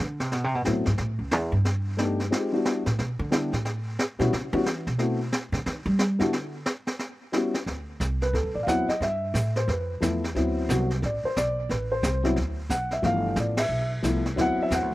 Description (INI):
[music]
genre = jazz piano trio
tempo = 179 BPM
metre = 4/4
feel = swing 63% on 8ths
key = D mixolydian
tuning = A4 = 440 Hz
[part]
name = upright bass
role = bass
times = 0.0-14.9 s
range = G1 to G3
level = -27 LUFS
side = right 1 dB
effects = none
[part]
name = jazz brush drum kit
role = drums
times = 0.2-14.9 s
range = brushed snare drum, hi-hat, kick drum, ride cymbal, snare drum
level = -31 LUFS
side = equal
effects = none
[part]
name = dark baby grand piano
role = melody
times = 0.6-14.9 s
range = E3 to F#5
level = -26 LUFS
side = left 1 dB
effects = slapback echo
[sound]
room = little or no reverb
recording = recorded outdoors, with no room sound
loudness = -24 LUFS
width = side -17 dB against mid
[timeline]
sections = 0.0-7.7 A section; 7.7-14.9 B section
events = upright bass solo 0.0-7.7; band accent 13.5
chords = 0.0 D7(no3); 1.0 C#dim; 1.6 B7alt; 2.3 Em7; 3.6 Aadd9; 5.0 D13; 5.7 N.C.; 7.0 Gmaj7#11; 7.7 D13; 9.0 G13; 10.3 D13; 11.7 Am; 12.4 Bm; 13.0 G13; 14.4 D13